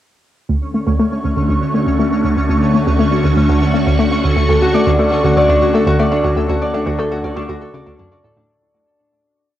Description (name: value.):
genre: ambient, sequencer-driven space music.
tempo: 120 BPM.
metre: 4/4.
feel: straight.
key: D major.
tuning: A4 = 440 Hz.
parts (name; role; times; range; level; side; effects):
phased string machine; sustained chords; 0.5-8.5 s; D3 to C#6; -18 LUFS; right 1 dB; ensemble chorus, phaser, cassette tape.
hollow square pluck; riff; 0.5-8.4 s; D2 to A3; -16 LUFS; equal; chorus, phaser, cassette tape, tape echo.
analog drone; bass; 1.8-8.5 s; D2; -29 LUFS; equal; none.
pulsing gated texture; texture; 0.5-8.5 s; C#4 to C#6; -22 LUFS; left 1 dB; chorus, built-in reverb, cassette tape.
Celtic harp; arpeggios; 4.5-9.6 s; D4 to D5; -16 LUFS; left 1 dB; auto-pan, cassette tape, tape echo.
room: wet spring reverb, RT60 2.4 s.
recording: home recording on cassette.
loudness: -12 LUFS.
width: side -12 dB against mid.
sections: 0.5-8.5 A section.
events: filter sweep on synth arpeggio sound 0.5-8.5; fade-out 5.8-8.5.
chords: 0.5 Dmaj7.